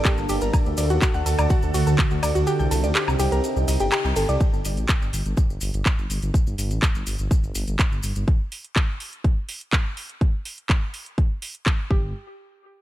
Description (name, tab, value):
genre	melodic techno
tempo	124 BPM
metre	4/4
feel	straight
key	unclear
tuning	A4 = 444 Hz
part	evolving wavetable pad	sustained chords	0.0-4.4 s	C3 to A4	-26 LUFS	right 1 dB	phaser, built-in reverb, sidechain pumping
part	maracas	percussion	0.0-8.3 s	none	-36 LUFS	left 3 dB	none
part	woody wave-folded pluck	arpeggios	0.1-4.3, 11.9-12.1 s	F#4 to G6	-26 LUFS	equal	chorus, sidechain pumping, dub echo
part	electronic kick drum	drums	0.1-12.0 s	none	-20 LUFS	equal	none
part	house drum kit	drums	0.1-11.8 s	handclaps, hi-hat, ride cymbal, woodblock	-27 LUFS	equal	none
part	dark detuned saw bass	bass	0.2-8.2, 11.9-12.1 s	G1 to Eb2	-24 LUFS	equal	sidechain pumping
room	digital ambience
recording	none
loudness	-20 LUFS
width	side -14 dB against mid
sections	0.0-4.4 A section; 4.4-12.1 B section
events	drop 0.0-4.4; kick drops out 2.5-4.4; band accent 3.9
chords	0.0 Gm; 0.5 D; 2.5 Cm; 4.4 N.C.